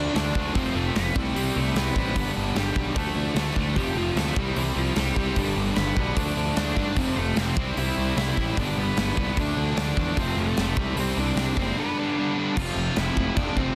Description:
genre	punk rock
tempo	150 BPM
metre	4/4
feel	straight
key	C major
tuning	A4 = 440 Hz
part	crunchy overdriven guitar	melody	0.0-13.8 s	E3 to F5	-32 LUFS	equal	none
part	cranked stack guitar	riff	0.0-13.8 s	F2 to D4	-34 LUFS	equal	overdrive
part	distorted electric guitar	riff	0.0-13.8 s	F2 to F4	-32 LUFS	equal	distortion
part	fuzz picked electric bass	bass	0.0-13.7 s	F1 to G2	-30 LUFS	equal	overdrive
part	big rock drum kit	drums	0.2-13.7 s	crash cymbal, hi-hat, kick drum, snare drum	-31 LUFS	equal	none
part	thick fuzz guitar	riff	12.6-13.8 s	F2 to F3	-38 LUFS	equal	none
room	light reverb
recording	dense, heavily limited modern master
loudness	-25 LUFS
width	mono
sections	0.0-12.6 A section; 12.6-13.8 B section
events	none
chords	0.0 Dm; 0.6 F; 1.2 C; 2.2 G; 3.0 Dm; 3.8 F; 4.4 C; 5.4 G; 6.2 Dm; 7.0 F; 7.6 C; 8.6 G; 9.4 Dm; 10.2 F; 10.8 C; 11.8 G; 12.6 F

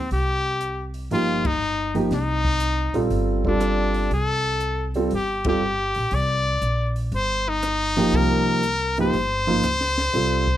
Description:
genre	modal jazz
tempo	120 BPM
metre	4/4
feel	swing 68% on 8ths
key	C dorian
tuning	A4 = 438 Hz
part	brilliant trumpet	melody	0.0-10.6 s	D4 to D5	-23 LUFS	left 2 dB	plate reverb
part	upright bass	bass	0.0-10.6 s	G1 to Db2	-26 LUFS	equal	none
part	compact cocktail drum kit	drums	0.1-10.5 s	hi-hat, kick drum, ride cymbal, rim click, snare drum	-32 LUFS	left 1 dB	none
part	warm concert grand piano	accompaniment	1.1-10.4 s	F3 to A4	-22 LUFS	right 2 dB	none
room	light reverb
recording	none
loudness	-20 LUFS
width	side -12 dB against mid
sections	0.0-10.6 A section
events	band accent 1.4, 5.4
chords	0.0 Cm7

